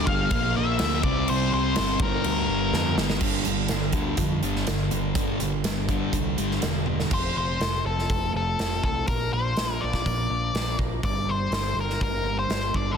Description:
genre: quiet-loud alternative rock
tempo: 123 BPM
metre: 4/4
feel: straight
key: G minor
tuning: A4 = 440 Hz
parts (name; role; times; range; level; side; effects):
- octave-fuzz lead guitar; melody; 0.0-2.9, 7.1-13.0 s; A4 to F5; -28 LUFS; left 4 dB; distortion, tape echo
- thick fuzz guitar; riff; 0.0-7.1 s; G2 to C4; -26 LUFS; equal; distortion
- growling picked electric bass; bass; 0.0-13.0 s; E1 to F2; -30 LUFS; equal; overdrive
- big rock drum kit; drums; 0.1-12.9 s; crash cymbal, hi-hat, kick drum, snare drum, toms; -28 LUFS; right 1 dB; none
- twelve-string electric guitar; arpeggios; 3.2-13.0 s; F2 to D4; -33 LUFS; right 2 dB; lush chorus
room: light reverb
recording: dense, heavily limited modern master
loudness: -22 LUFS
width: side -7 dB against mid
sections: 0.0-3.2 A section; 3.2-7.1 B section; 7.1-13.0 C section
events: drum fill 2.7-3.2, 6.9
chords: 0.3 Bb; 1.0 C5; 2.0 Gm; 7.1 F; 9.1 Bb; 11.0 Gm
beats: 0.31 0.79 | 1.28 1.76 2.25 2.73 | 3.22 3.71 4.19 4.68 | 5.17 5.66 6.14 6.63 | 7.12 7.61 8.10 8.59 | 9.08 9.57 10.06 10.55 | 11.04 11.53 12.02 12.51

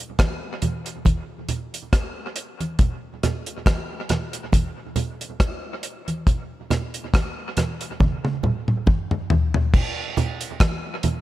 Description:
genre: reggae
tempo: 69 BPM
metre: 4/4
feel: swing 56% on 16ths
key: none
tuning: none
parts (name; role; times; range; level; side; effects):
- deep reggae drum kit; drums; 0.2-11.2 s; crash cymbal, hi-hat, kick drum, rim click, toms; -21 LUFS; equal; dub echo
- congas; percussion; 0.2-11.2 s; none; -27 LUFS; right 3 dB; dub echo
room: light reverb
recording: none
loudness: -21 LUFS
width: side -15 dB against mid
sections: 0.0-9.7 A section; 9.7-11.2 B section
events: drum fill 8.0-9.7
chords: none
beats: 0.19 1.06 1.93 | 2.80 3.66 4.53 5.40 | 6.27 7.13 8.00 8.87 | 9.73 10.60

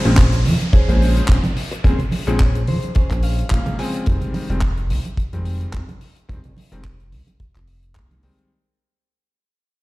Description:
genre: nu-disco, nu disco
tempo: 108 BPM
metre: 4/4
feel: swing 55% on 16ths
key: unclear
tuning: A4 = 439 Hz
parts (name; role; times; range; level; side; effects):
- direct-recorded clean electric guitar; riff; 0.0-4.0 s; Db4 to Ab5; -29 LUFS; equal; wide subtle chorus, tape echo
- downlifter; sound effects; 0.0-4.1 s; none; -33 LUFS; equal; none
- bright electric grand piano; accompaniment; 0.1-8.5 s; Db3 to C5; -26 LUFS; left 1 dB; vintage 12-bit sampler grit, sidechain pumping, tape echo
- chorused synth bass; bass; 0.1-8.3 s; F1 to F2; -19 LUFS; equal; none
- damped 70s drum kit; drums; 0.1-8.5 s; handclaps, hi-hat; -30 LUFS; equal; studio reverb
- kick drum; drums; 0.2-8.1 s; none; -16 LUFS; equal; studio reverb
- congas; percussion; 0.5-8.2 s; none; -26 LUFS; right 1 dB; none
room: studio reverb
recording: played on a big sound system in a bare room, stone room reverb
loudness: -16 LUFS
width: side -20 dB against mid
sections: 0.0-8.5 A section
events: fade-out 0.0-8.5; clean electric guitar fill 2.4-4.1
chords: 0.0 Bbm9; 4.1 Fm9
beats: 0.18 0.73 1.29 | 1.84 2.40 2.96 3.51 | 4.07 4.62 5.18 5.73 | 6.29 6.84 7.40 7.96

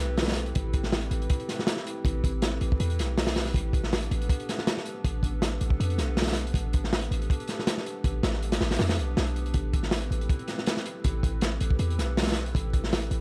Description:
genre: drum and bass, jungle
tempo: 160 BPM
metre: 4/4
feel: straight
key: A minor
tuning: A4 = 438 Hz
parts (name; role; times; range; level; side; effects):
- warbly tape-like pad; sustained chords; 0.0-13.2 s; B3 to B4; -39 LUFS; equal; chorus, built-in reverb, vintage 12-bit sampler grit
- warm 808-style bass; bass; 0.0-13.2 s; A1 to F2; -31 LUFS; equal; none
- crunchy breakbeat drum kit; drums; 0.2-13.2 s; hi-hat, kick drum, snare drum; -30 LUFS; equal; none
room: small room ambience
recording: dark, warm production, vinyl crackle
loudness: -28 LUFS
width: mono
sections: 0.0-13.2 A section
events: none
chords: 0.0 Am7; 3.5 Gadd9/A; 9.5 Am7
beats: 0.17 | 0.55 0.92 1.30 1.67 | 2.05 2.42 2.80 3.17 | 3.55 3.92 4.30 4.67 | 5.05 5.42 5.80 6.17 | 6.55 6.92 7.30 7.67 | 8.05 8.42 8.80 9.17 | 9.55 9.92 10.30 10.67 | 11.05 11.42 11.80 12.17 | 12.55 12.92

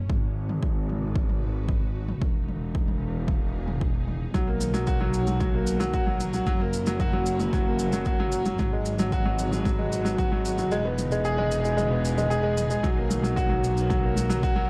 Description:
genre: piano and strings electronica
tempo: 113 BPM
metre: 4/4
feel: straight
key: G# minor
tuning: A4 = 440 Hz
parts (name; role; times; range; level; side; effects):
- clear symphonic string section; sustained chords; 0.0-14.7 s; B2 to B4; -44 LUFS; equal; none
- clear studio double bass section; bass; 0.0-14.7 s; E1 to B1; -31 LUFS; equal; sidechain pumping
- electronic kick drum; drums; 0.1-14.5 s; none; -30 LUFS; equal; overdrive, studio reverb
- electronic toms and shaker; drums; 0.1-14.5 s; none; -38 LUFS; equal; overdrive, studio reverb
- clear baby grand piano; riff; 4.3-14.7 s; F#3 to G#4; -28 LUFS; equal; delay
room: studio ambience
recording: dark, warm production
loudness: -26 LUFS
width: mono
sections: 0.0-14.7 A section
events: kick drops out 10.7-12.8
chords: 0.1 G#m7; 2.2 Emaj7; 4.3 Bmaj7; 6.5 F#7; 8.6 G#m7; 10.7 Emaj7; 12.8 Bmaj7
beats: | 0.10 0.63 1.16 1.69 | 2.22 2.75 3.28 3.81 | 4.34 4.87 5.41 5.94 | 6.47 7.00 7.53 8.06 | 8.59 9.12 9.65 10.18 | 10.71 11.25 11.78 12.31 | 12.84 13.37 13.90 14.43

